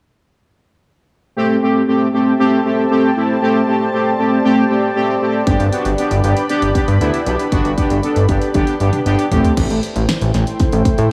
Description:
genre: synth-pop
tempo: 117 BPM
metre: 4/4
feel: straight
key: unclear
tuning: A4 = 441 Hz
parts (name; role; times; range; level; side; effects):
- analog synth brass; accompaniment; 1.4-9.5 s; A3 to A4; -18 LUFS; equal; chorus, tape echo
- lush unison pad; sustained chords; 1.9-11.1 s; A3 to B5; -24 LUFS; equal; chorus
- fat analog bass; bass; 5.5-11.1 s; G1 to A2; -18 LUFS; equal; none
- pop drum kit; drums; 5.5-11.1 s; crash cymbal, hi-hat, kick drum, snare drum, toms; -22 LUFS; equal; tape echo
room: moderate echo chamber reverb, RT60 2.3 s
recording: echo-heavy mix, small room ambience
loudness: -16 LUFS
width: mono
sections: 1.4-9.6 A section; 9.6-11.1 B section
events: drum fill 8.5-9.6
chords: 1.4 Am7; 5.5 G; 9.3 Am7

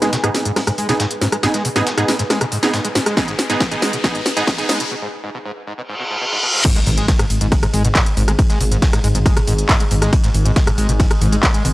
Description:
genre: driving peak-time techno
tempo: 138 BPM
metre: 4/4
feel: straight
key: G# minor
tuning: A4 = 440 Hz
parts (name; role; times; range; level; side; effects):
- screaming distorted acid line; riff; 0.0-11.7 s; G#2 to G#3; -23 LUFS; equal; distortion, analog chorus, cassette tape, sidechain pumping, tape echo
- supersaw stab; stabs; 0.0-4.8 s; B3 to G#4; -21 LUFS; right 2 dB; sidechain pumping, low-pass filter, tape echo
- techno drum kit; drums; 0.0-11.7 s; crash cymbal, handclaps, hi-hat, ride cymbal, rim click, snare drum; -21 LUFS; equal; overdrive, small room ambience, sidechain pumping on hats, sidechain pumping on cymbals
- riser, reverse cymbal and impact; sound effects; 2.3-8.4 s; none; -23 LUFS; left 1 dB; none
- warbly tape-like pad; texture; 0.0-4.9 s; D#4 to G#5; -30 LUFS; equal; chorus, built-in reverb, phaser, sidechain pumping
- dusty soul sampler-style drum kit; drums; 0.1-11.7 s; hi-hat, snare drum; -28 LUFS; equal; none
- electronic kick drum; drums; 3.2-11.5 s; none; -16 LUFS; equal; overdrive, small room ambience
- overtone-sweeping drone; drone; 7.0-11.7 s; G#2 to G#3; -30 LUFS; left 1 dB; chorus, built-in reverb, sidechain pumping
- dark detuned saw bass; bass; 6.9-11.7 s; G#1; -18 LUFS; equal; sidechain pumping
room: digital ambience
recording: dry, gritty hardware recording, transformer saturation, cassette tape, high-pass filter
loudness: -14 LUFS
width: side -18 dB against mid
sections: 0.0-6.6 A section; 6.6-11.7 B section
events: build-up 0.0-6.6; drum fill 0.0-4.9; filter sweep on acid bass 0.0-6.6; filter sweep on supersaw synth 0.0-6.6; filter sweep 0.0-6.6; riser 2.3-4.9; break 4.9-6.6; reverse cymbal 5.9-6.6; drop 6.6-11.7; impact 6.6-8.4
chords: 0.0 G#m; 6.6 N.C.

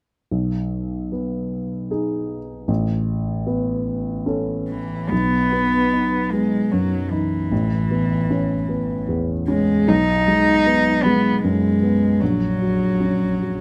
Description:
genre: neoclassical piano and strings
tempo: 76 BPM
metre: 3/4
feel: rubato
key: B major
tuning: A4 = 440 Hz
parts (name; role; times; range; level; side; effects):
- dark upright piano; accompaniment; 0.3-13.6 s; A1 to A4; -23 LUFS; equal; none
- warm cello; second line; 4.7-13.6 s; E3 to D#4; -22 LUFS; equal; none
room: light reverb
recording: close, detailed microphones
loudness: -20 LUFS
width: mono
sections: 0.3-5.1 A section; 5.1-13.6 B section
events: none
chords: 0.3 B6; 2.7 Aadd9; 5.1 B; 7.5 Aadd9; 9.9 B6; 12.2 F#/A#

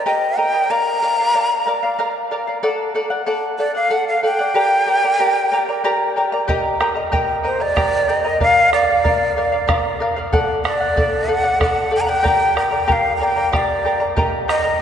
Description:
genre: andean folk, Andean ensemble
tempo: 94 BPM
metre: 3/4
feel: straight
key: G minor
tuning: A4 = 440 Hz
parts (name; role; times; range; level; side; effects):
- breathy bright large quena; melody; 0.0-14.8 s; C5 to Bb5; -18 LUFS; equal; none
- charango; accompaniment; 0.0-14.8 s; G4 to Bb5; -19 LUFS; left 1 dB; none
- bombo; percussion; 6.5-14.6 s; none; -23 LUFS; right 1 dB; none
room: wet cathedral reverb, RT60 5.5 s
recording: recorded in a church or concert hall, nothing above 10.4 kHz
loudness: -15 LUFS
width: side -8 dB against mid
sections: 0.0-6.5 A section; 6.5-14.8 A section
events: none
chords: 0.0 Eb; 0.7 Bb; 2.6 D; 4.6 Gm; 6.5 Eb; 8.4 Bb; 10.3 D; 12.2 Gm; 14.2 Eb

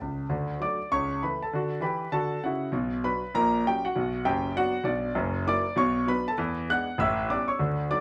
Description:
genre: jazz, stride piano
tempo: 198 BPM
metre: 4/4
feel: swing 64% on 8ths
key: D major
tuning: A4 = 440 Hz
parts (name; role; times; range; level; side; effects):
- warm concert grand piano; solo; 0.0-8.0 s; F#1 to F#6; -28 LUFS; equal; none
room: moderate studio reverb, RT60 0.8 s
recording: vinyl crackle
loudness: -28 LUFS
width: mono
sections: 0.3-8.0 A section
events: none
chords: 0.3 D; 0.9 A/C#; 1.5 D; 2.7 Bm; 3.3 F#/A#; 3.9 Bm; 5.2 F#7; 5.8 Bm; 6.4 E7; 7.0 A9

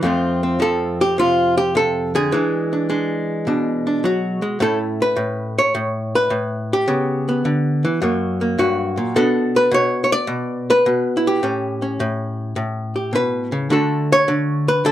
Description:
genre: solo jazz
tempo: 105 BPM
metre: 4/4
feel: swing 69% on 8ths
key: A major from 4.6 s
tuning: A4 = 440 Hz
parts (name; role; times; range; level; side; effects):
- archtop guitar, miked and amplified; solo; 0.0-14.9 s; F2 to D5; -17 LUFS; equal; none
room: moderate club ambience, RT60 0.5 s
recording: none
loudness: -17 LUFS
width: side -12 dB against mid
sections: 0.0-4.6 A section; 4.6-14.9 B section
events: none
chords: 0.0 F; 2.3 E9; 4.6 Aadd9; 6.9 C#m7b5; 8.0 F#; 9.1 Bm7; 11.4 A9; 13.7 D

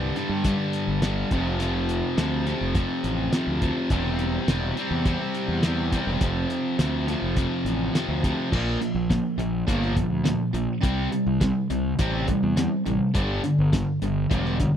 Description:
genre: classic rock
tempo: 104 BPM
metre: 4/4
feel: straight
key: unclear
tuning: A4 = 440 Hz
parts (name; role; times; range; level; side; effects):
- distorted electric guitar; riff; 0.0-14.8 s; F2 to C4; -25 LUFS; equal; distortion
- fuzz fingered electric bass; bass; 0.0-14.8 s; E1 to G2; -27 LUFS; equal; overdrive
- cloth-damped thuddy drum kit; drums; 0.2-14.7 s; crash cymbal, hi-hat, kick drum, snare drum; -25 LUFS; equal; none
room: studio reverb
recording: dry, close 1970s-style studio recording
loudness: -22 LUFS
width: side -9 dB against mid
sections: 0.0-8.5 A section; 8.5-14.8 B section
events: none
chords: 0.0 G5; 1.3 F5; 3.9 C/E; 6.2 F5; 8.5 Bb5; 10.8 C5; 13.1 G5

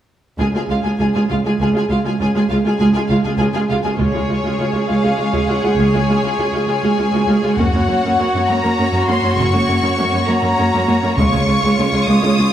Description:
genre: cinematic, epic orchestral film score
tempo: 67 BPM (dotted quarters)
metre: 6/8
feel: straight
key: Db major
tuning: A4 = 440 Hz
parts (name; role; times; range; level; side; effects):
- clear symphonic violin section; second line; 0.4-12.5 s; F4 to Ab5; -21 LUFS; left 1 dB; none
- rich symphonic viola section; accompaniment; 0.4-12.4 s; Ab3 to F4; -20 LUFS; right 1 dB; none
- rich symphonic cello section; bass; 0.4-12.4 s; Db2 to Gb2; -19 LUFS; right 1 dB; none
- rich symphonic double bass section; bass; 0.4-11.3 s; Gb1 to Db2; -21 LUFS; right 1 dB; none
- rich symphonic violin section; melody; 4.0-12.5 s; Db5 to Eb6; -21 LUFS; left 2 dB; none
- taiko ensemble; drums; 4.0-12.3 s; none; -25 LUFS; left 1 dB; none
room: moderate scoring stage reverb, RT60 2.0 s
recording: small room ambience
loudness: -14 LUFS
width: side -10 dB against mid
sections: 0.4-4.0 A section; 4.0-12.5 B section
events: none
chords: 0.4 Db; 7.6 Gb; 11.2 Db

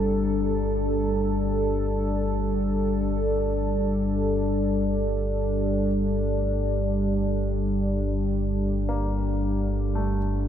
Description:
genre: ambient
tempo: free time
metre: none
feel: none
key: G minor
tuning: A4 = 440 Hz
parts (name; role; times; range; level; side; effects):
- deep dark ambient pad; sustained chords; 0.0-10.5 s; G3 to A4; -25 LUFS; left 1 dB; chorus, built-in reverb
- warm baby grand piano; arpeggios; 0.0-10.5 s; C3 to Bb3; -39 LUFS; left 3 dB; tape echo
- deep rumbling drone; drone; 0.0-10.5 s; G1 to G2; -28 LUFS; equal; built-in reverb, wide subtle chorus
room: wet huge ambient reverb, RT60 8.4 s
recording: cassette tape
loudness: -23 LUFS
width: side -9 dB against mid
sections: 0.0-10.5 A section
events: fade-in on grand piano 0.0-10.5; filter sweep on synth drone 0.0-10.5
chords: 0.0 Gm

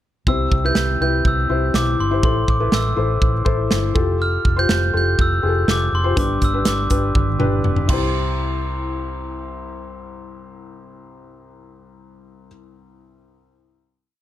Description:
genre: piano-driven pop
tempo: 122 BPM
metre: 4/4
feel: straight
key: C major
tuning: A4 = 440 Hz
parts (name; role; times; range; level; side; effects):
- glockenspiel with soft plastic mallets; melody; 0.3-12.5 s; C6 to G6; -24 LUFS; right 1 dB; none
- felt-muted upright piano; accompaniment; 0.3-14.2 s; C2 to C5; -24 LUFS; left 4 dB; none
- vintage muted fingered electric bass; bass; 0.3-12.5 s; F1 to C2; -22 LUFS; equal; none
- modern studio drum kit; drums; 0.3-8.0 s; crash cymbal, hi-hat, kick drum, snare drum, toms; -21 LUFS; right 1 dB; none
room: light reverb, small room ambience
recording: dark, warm production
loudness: -16 LUFS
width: side -12 dB against mid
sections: 0.3-8.1 verse; 8.1-12.1 final hit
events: drum fill 7.2-8.1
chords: 0.3 C; 2.2 Am; 4.0 Fadd9; 6.2 G; 7.9 C

